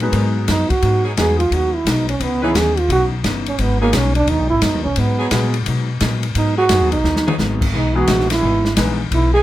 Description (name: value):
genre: jazz, big band swing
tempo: 174 BPM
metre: 4/4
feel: swing 64% on 8ths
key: G# minor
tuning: A4 = 441 Hz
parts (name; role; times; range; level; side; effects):
- vintage hollow-body jazz guitar; accompaniment; 0.0-9.4 s; G#2 to D#4; -26 LUFS; left 4 dB; none
- warm concert grand piano; accompaniment; 0.0-9.0 s; E3 to B4; -23 LUFS; left 1 dB; none
- upright bass; bass; 0.0-9.4 s; G1 to B2; -19 LUFS; left 1 dB; none
- open jazz drum kit; drums; 0.0-9.2 s; crash cymbal, hi-hat, kick drum, ride cymbal, snare drum, toms; -22 LUFS; left 1 dB; none
- edgy saxophone section; sustained chords; 0.1-9.4 s; E3 to B4; -28 LUFS; equal; none
- breathy trombone; melody; 0.5-9.4 s; A#3 to G#4; -18 LUFS; right 3 dB; none
room: light reverb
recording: close, detailed microphones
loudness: -15 LUFS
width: side -14 dB against mid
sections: 0.0-9.4 A section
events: trombone solo 0.0-9.4; drum fill 7.0-7.4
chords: 0.0 G#m7; 2.2 C#m9; 3.6 G#m7; 7.7 Emaj7